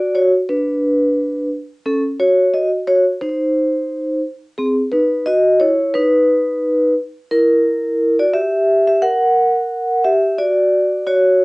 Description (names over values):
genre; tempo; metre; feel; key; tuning
hip hop; 88 BPM; 4/4; swing 58% on 16ths; unclear; A4 = 440 Hz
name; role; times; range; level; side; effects
vibraphone with soft mallets; solo; 0.0-11.4 s; C4 to F#5; -14 LUFS; equal; slapback echo
room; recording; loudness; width
moderate small room reverb, RT60 0.6 s; worn, warbling old tape, cassette tape, warbly pitch drift, nothing above 10.3 kHz; -14 LUFS; side -26 dB against mid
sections
0.0-11.4 A section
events
vibraphone solo 0.0-11.4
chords
0.0 Bmadd9; 2.2 D#m7; 3.6 Cm; 4.9 C#m13/D#; 7.6 Edim; 10.4 Bm (rootless)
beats
0.15 0.83 1.51 | 2.19 2.88 3.56 4.24 | 4.92 5.60 6.29 6.97 | 7.65 8.33 9.01 9.69 | 10.38 11.06